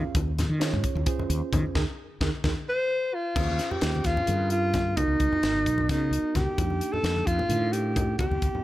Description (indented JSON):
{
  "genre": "electric jazz fusion",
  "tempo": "261 BPM (eighths)",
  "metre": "7/8",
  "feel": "straight",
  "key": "Eb mixolydian",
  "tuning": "A4 = 435 Hz",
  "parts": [
    { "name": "tine electric piano", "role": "accompaniment", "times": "0.0-8.6 s", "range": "Bb3 to F5", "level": "-34 LUFS", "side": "right 9 dB", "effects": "none" },
    { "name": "mellow fretless electric bass", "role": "bass", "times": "0.0-8.6 s", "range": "Ab1 to Eb3", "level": "-28 LUFS", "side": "equal", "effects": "none" },
    { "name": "congas", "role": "percussion", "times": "0.0-8.6 s", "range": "none", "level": "-33 LUFS", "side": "left 2 dB", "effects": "none" },
    { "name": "tight funk drum kit", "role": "drums", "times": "0.1-8.5 s", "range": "crash cymbal, hi-hat, kick drum, snare drum", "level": "-30 LUFS", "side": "equal", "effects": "none" },
    { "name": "breathy alto saxophone", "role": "melody", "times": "2.7-8.6 s", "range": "Eb4 to C5", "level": "-26 LUFS", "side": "left 1 dB", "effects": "none" }
  ],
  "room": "light reverb",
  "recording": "none",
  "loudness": "-24 LUFS",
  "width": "side -15 dB against mid",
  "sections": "0.0-3.4 A section; 3.4-8.6 B section",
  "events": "tine electric piano fill 0.0; band accent 1.8-3.4; drum fill 2.0-3.4",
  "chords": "0.0 Eb13sus4; 5.0 Db13sus4; 6.6 F13sus4",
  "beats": "| 0.15 0.38 0.61 0.84 1.07 1.30 1.53 | 1.76 1.99 2.22 2.45 2.68 2.91 3.14 | 3.37 3.60 3.83 4.05 4.29 4.51 4.74 | 4.97 5.20 5.43 5.66 5.89 6.12 6.35 | 6.58 6.81 7.04 7.27 7.50 7.73 7.96 | 8.19 8.42"
}